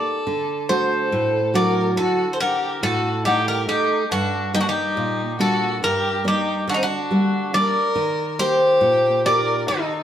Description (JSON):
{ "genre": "greek folk, Greek bouzouki band", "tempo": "140 BPM (eighths)", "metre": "9/8", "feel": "straight", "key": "D phrygian dominant", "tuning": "A4 = 440 Hz", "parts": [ { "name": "Greek bouzouki", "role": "melody", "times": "0.0-10.0 s", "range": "Eb4 to D5", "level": "-21 LUFS", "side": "equal", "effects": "none" }, { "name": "rich violin", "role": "second line", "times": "0.0-10.0 s", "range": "C4 to Bb4", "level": "-25 LUFS", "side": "left 1 dB", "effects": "none" }, { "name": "nylon-string guitar", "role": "accompaniment", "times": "0.0-10.0 s", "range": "G2 to F#5", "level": "-23 LUFS", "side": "right 1 dB", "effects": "none" } ], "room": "wet studio reverb, RT60 0.9 s", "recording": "band playing live in one room", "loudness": "-18 LUFS", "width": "side -10 dB against mid", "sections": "0.3-10.0 A section", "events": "none", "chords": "0.3 D; 4.1 Gm; 8.0 Eb", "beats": "| 0.26 0.69 1.12 1.55 1.98 2.41 2.83 3.26 3.69 | 4.12 4.55 4.97 5.40 5.83 6.26 6.69 7.12 7.54 | 7.97 8.40 8.83 9.26 9.68" }